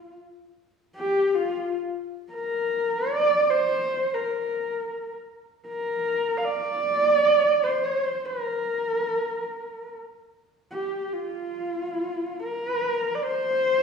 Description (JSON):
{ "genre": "mongolian traditional, Mongolian folk", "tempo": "free time", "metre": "none", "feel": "none", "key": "F zhi mode", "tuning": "A4 = 440 Hz", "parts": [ { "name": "warm horsehead fiddle", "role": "solo", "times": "0.0-13.8 s", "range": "F4 to F5", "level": "-23 LUFS", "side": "equal", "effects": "none" } ], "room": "wet recital hall reverb, RT60 1.4 s", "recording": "recorded in a church or concert hall, small room reverb", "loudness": "-23 LUFS", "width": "side -6 dB against mid", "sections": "0.0-1.9 A section; 1.9-13.8 A section", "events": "none", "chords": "none" }